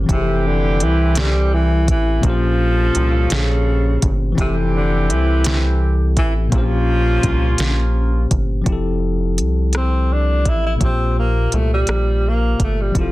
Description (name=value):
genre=slow six-eight R&B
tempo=56 BPM (dotted quarters)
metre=6/8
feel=straight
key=F major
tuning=A4 = 440 Hz
part: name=tine electric piano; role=accompaniment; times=0.0-13.1 s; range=Bb2 to C5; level=-23 LUFS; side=left 3 dB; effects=plate reverb
part: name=rubbery square bass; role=bass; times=0.0-13.1 s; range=F1 to C2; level=-18 LUFS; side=equal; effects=none
part: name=breathy tenor saxophone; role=melody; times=0.1-13.1 s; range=C3 to E4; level=-21 LUFS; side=equal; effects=slapback echo, plate reverb
part: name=warm horn section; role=stabs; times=0.1-8.3 s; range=E3 to A4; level=-27 LUFS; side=right 3 dB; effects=plate reverb
part: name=smooth R&B drum kit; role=drums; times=0.1-13.1 s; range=hi-hat, kick drum, rim click, snare drum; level=-19 LUFS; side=equal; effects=none
room=light reverb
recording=dense, heavily limited modern master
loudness=-15 LUFS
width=side -18 dB against mid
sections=0.0-8.7 A section; 8.7-13.1 B section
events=tenor saxophone solo 8.7-13.1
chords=0.1 Fmaj9; 2.2 Bbm6; 4.4 Fmaj9; 6.5 Bbm6; 8.7 Fmaj9; 10.8 Bb5